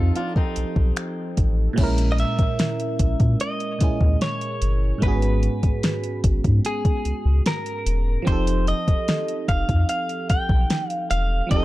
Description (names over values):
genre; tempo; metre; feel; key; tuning
contemporary R&B; 74 BPM; 4/4; straight; unclear; A4 = 440 Hz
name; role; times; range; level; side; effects
FM electric piano; accompaniment; 0.0-11.6 s; G#2 to A#4; -27 LUFS; right 3 dB; chorus
lush unison pad; sustained chords; 0.0-1.7 s; F3 to A4; -36 LUFS; left 1 dB; chorus
fingerpicked swing-style acoustic guitar; arpeggios; 0.0-1.5 s; C4 to A4; -32 LUFS; left 2 dB; tape echo
round analog bass; bass; 0.0-11.6 s; E1 to A#2; -21 LUFS; equal; none
smooth R&B drum kit; drums; 0.2-11.6 s; crash cymbal, finger snaps, hi-hat, kick drum, snare drum; -22 LUFS; equal; none
direct-recorded clean electric guitar; melody; 2.1-11.6 s; G#4 to G5; -27 LUFS; left 1 dB; lush chorus, tape echo
room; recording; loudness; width
digital ambience; dark, warm production; -19 LUFS; side -17 dB against mid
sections
0.0-1.8 A section; 1.8-11.6 B section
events
none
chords
0.0 F7; 1.8 A#m7b5; 5.0 G#m11; 8.3 F7